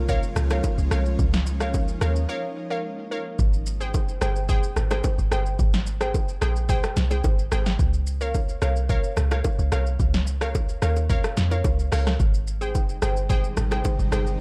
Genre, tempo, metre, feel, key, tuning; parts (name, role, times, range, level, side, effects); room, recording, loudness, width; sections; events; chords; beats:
amapiano; 109 BPM; 4/4; straight; Ab major; A4 = 435 Hz
ethereal airy pad; sustained chords; 0.0-3.4, 12.6-14.4 s; C3 to F4; -37 LUFS; equal; ensemble chorus, built-in reverb
deep log drum bass; bass; 0.0-14.4 s; G1 to F2; -26 LUFS; equal
glassy wavetable pluck; stabs; 0.1-14.2 s; Ab4 to G5; -33 LUFS; equal; chorus, tape echo
deep house drum kit; drums; 0.1-14.4 s; hi-hat, kick drum, rim click, shaker, snare drum; -28 LUFS; equal; overdrive, vintage 12-bit sampler grit
congas and bongos; percussion; 0.1-14.0 s; -36 LUFS; equal
digital ambience; dark, warm production; -24 LUFS; mono
0.0-3.4 A section; 3.4-14.4 A section
drop 0.0-3.4, 3.4-14.4; break 2.3-3.4
0.0 Db6; 3.4 Abmaj7; 7.8 Db6; 12.2 Abmaj7
0.09 0.64 | 1.19 1.74 2.29 2.84 | 3.39 3.94 4.49 5.04 | 5.59 6.14 6.69 7.24 | 7.79 8.34 8.89 9.45 | 10.00 10.55 11.10 11.65 | 12.20 12.75 13.30 13.85 | 14.40